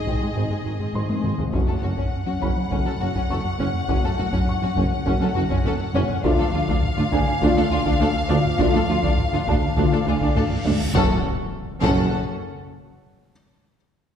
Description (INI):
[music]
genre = cinematic, hybrid orchestral and electronic film score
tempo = 102 BPM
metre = 4/4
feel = straight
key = F# harmonic minor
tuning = A4 = 441 Hz
[part]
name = warm symphonic violin section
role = melody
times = 0.0-12.2 s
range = D#5 to F#5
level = -29 LUFS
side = left 4 dB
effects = none
[part]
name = warm symphonic violin section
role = second line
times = 0.0-12.2 s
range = C#4 to A4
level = -30 LUFS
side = left 4 dB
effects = none
[part]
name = felt-muted upright piano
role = texture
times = 0.0-11.0 s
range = F4 to C#6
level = -34 LUFS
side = equal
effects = ping-pong delay
[part]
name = dark symphonic viola section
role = accompaniment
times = 0.1-12.2 s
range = D#3 to D4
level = -30 LUFS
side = right 2 dB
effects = none
[part]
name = harp-like synth pluck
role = arpeggios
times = 0.1-10.7 s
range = D3 to G#4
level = -30 LUFS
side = left 4 dB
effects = chorus
[part]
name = rubbery square bass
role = riff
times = 0.1-10.9 s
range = D2 to G#3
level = -28 LUFS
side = right 2 dB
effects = none
[part]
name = mellow tuba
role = bass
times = 0.1-12.1 s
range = F#1 to D2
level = -29 LUFS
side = right 3 dB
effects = none
[part]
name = rich symphonic double bass section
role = bass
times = 0.1-12.2 s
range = F#1 to D2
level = -29 LUFS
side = right 2 dB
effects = none
[part]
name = warm symphonic cello section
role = bass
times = 0.1-12.2 s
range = D2 to G#2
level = -29 LUFS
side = right 3 dB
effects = none
[part]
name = solo taiko drums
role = drums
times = 0.1-13.0 s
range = none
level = -26 LUFS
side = equal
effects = none
[part]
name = warm French horn section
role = sustained chords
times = 0.4-11.2 s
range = A3 to F#4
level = -29 LUFS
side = left 4 dB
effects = none
[part]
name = reverse cymbal and impact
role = sound effects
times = 10.4-13.3 s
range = none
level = -32 LUFS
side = equal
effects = none
[sound]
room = wet scoring stage reverb, RT60 1.6 s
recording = heard from further back in the room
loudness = -19 LUFS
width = side -8 dB against mid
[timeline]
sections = 0.0-1.5 A section; 1.5-10.9 B section; 10.9-13.3 C section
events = drum fill 0.9-1.5, 10.4-10.9; reverse cymbal 10.4-10.9; impact 10.9-13.3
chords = 0.0 G#; 1.5 F#m; 6.2 Dm; 10.9 F#m